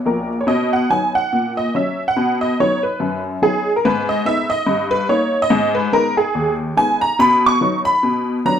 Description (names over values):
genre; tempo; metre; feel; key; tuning
jazz, stride piano; 144 BPM; 4/4; swing 58% on 8ths; B major; A4 = 443 Hz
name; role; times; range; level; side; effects
honky-tonk upright piano; solo; 0.0-8.6 s; A#1 to C#6; -15 LUFS; equal; none
room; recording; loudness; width
wet studio reverb, RT60 0.7 s; heard from further back in the room; -15 LUFS; side -9 dB against mid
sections
0.5-8.6 A section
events
honky-tonk piano fill 0.0-0.5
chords
0.5 B; 1.3 F#/A#; 2.2 B; 3.8 G#m; 4.7 D#/G; 5.5 G#m; 7.2 B; 8.0 Bm